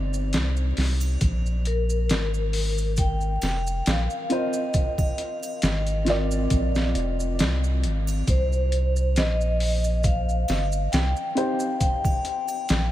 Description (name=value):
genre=trip hop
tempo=68 BPM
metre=4/4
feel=swing 55% on 16ths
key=unclear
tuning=A4 = 439 Hz
part: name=dark upright piano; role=accompaniment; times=0.0-11.6 s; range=C4 to D5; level=-30 LUFS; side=equal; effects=harmonic tremolo, tape echo
part: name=round analog bass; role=bass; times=0.0-12.9 s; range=F1 to C2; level=-24 LUFS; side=equal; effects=none
part: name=maracas and triangle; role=percussion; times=0.1-12.9 s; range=none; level=-42 LUFS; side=right 5 dB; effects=none
part: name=boom bap sampler-style drum kit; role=drums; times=0.3-12.9 s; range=hi-hat, kick drum, snare drum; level=-27 LUFS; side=equal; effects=none
part: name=vibraphone with medium mallets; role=melody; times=1.7-12.9 s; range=Bb4 to G5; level=-29 LUFS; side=left 1 dB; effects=dub echo
room=light reverb, studio reverb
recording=vinyl crackle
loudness=-22 LUFS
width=side -14 dB against mid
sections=0.0-12.9 A section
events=none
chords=0.0 Cm; 1.2 Bbsus2; 8.3 C5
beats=0.34 | 1.22 2.10 2.98 3.86 | 4.75 5.63 6.51 7.39 | 8.28 9.16 10.04 10.92 | 11.81 12.69